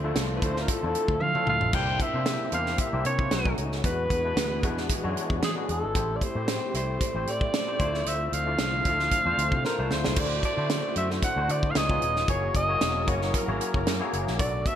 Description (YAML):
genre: polished 1980s jazz-funk pop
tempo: 114 BPM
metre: 4/4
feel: swing 54% on 16ths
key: unclear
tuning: A4 = 440 Hz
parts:
  - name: barky tine electric piano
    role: accompaniment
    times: 0.0-14.8 s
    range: G#3 to C6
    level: -32 LUFS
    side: left 2 dB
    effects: overdrive, ensemble chorus
  - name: warm studio string section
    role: sustained chords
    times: 0.0-14.8 s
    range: C3 to A#4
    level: -38 LUFS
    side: left 1 dB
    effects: none
  - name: fingered electric bass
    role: bass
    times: 0.0-14.6 s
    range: D#1 to E3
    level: -31 LUFS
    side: equal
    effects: none
  - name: tight funk drum kit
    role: drums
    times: 0.2-14.8 s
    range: crash cymbal, hi-hat, kick drum, snare drum, toms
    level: -29 LUFS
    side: right 1 dB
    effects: gated reverb
  - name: warm alto saxophone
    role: melody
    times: 0.4-14.8 s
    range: G#4 to G5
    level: -28 LUFS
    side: right 1 dB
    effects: none
room: moderate plate reverb, RT60 2.2 s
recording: bright 1980s-style digital production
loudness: -24 LUFS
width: side -10 dB against mid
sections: 0.0-10.2 A section; 10.2-14.8 A section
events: drum fill 1.2-1.7, 9.6-10.2; tine electric piano fill 9.4-10.2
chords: 0.0 Dm7; 1.7 C7; 3.3 B7; 3.8 E7; 5.9 Am7; 7.8 Dm7; 10.2 D7; 11.8 C#7; 12.3 F#7